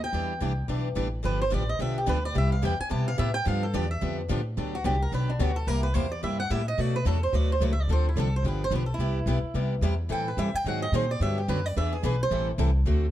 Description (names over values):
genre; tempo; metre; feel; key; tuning
acoustic string swing (jazz manouche); 217 BPM; 4/4; swing 58% on 8ths; G major from 4.6 s; A4 = 445 Hz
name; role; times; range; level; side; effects
picked swing-style acoustic guitar; melody; 0.0-12.5 s; D4 to A5; -31 LUFS; right 2 dB; plate reverb
upright bass; bass; 0.0-13.1 s; G1 to B2; -26 LUFS; equal; none
picked plugged-in steel-string acoustic guitar; accompaniment; 0.1-13.1 s; B2 to B4; -35 LUFS; right 8 dB; none
picked steel-string acoustic guitar; accompaniment; 0.1-13.1 s; B2 to A4; -33 LUFS; left 6 dB; none
room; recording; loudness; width
light reverb; dark, warm production; -24 LUFS; side -12 dB against mid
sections
0.0-4.6 A section; 4.6-13.1 A section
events
steel-string acoustic guitar solo 0.0-4.6, 4.6-13.1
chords
0.1 Em7; 1.2 G7; 2.4 Cmaj7; 3.5 G7; 4.6 Gmaj7; 5.7 C7; 6.8 Bm7; 7.9 Dm7; 8.4 G7; 9.0 Cmaj7; 10.1 Am7; 10.7 Ab9; 11.2 Gmaj7; 11.8 E7; 12.3 Am7